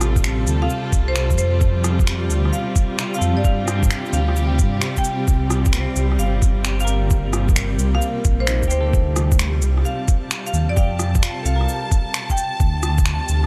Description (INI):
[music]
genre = future garage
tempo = 131 BPM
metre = 4/4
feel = swing 67% on 16ths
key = unclear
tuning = A4 = 441 Hz
[part]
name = marimba with medium hard mallets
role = melody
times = 0.0-12.7 s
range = C5 to G5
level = -31 LUFS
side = equal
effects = tape echo
[part]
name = semi-hollow electric guitar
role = accompaniment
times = 0.0-0.2, 3.0-12.4 s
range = G3 to Bb4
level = -36 LUFS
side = equal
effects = lush chorus, sidechain pumping, analog delay
[part]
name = warm studio string section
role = sustained chords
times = 0.0-13.5 s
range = C3 to A5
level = -28 LUFS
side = equal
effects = sidechain pumping
[part]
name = dark detuned saw bass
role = bass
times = 0.0-13.5 s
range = G1 to G2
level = -22 LUFS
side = equal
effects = sidechain pumping
[part]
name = electronic rim click, cabasa, shaker and finger snaps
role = drums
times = 0.0-13.5 s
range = none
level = -28 LUFS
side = equal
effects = none
[part]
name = electronic kick drum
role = drums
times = 0.2-13.0 s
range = none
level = -20 LUFS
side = equal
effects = none
[sound]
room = digital ambience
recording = none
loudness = -19 LUFS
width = mono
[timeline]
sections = 0.0-13.5 A section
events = none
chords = 0.0 Dm7; 5.3 Cm9; 12.6 Dm7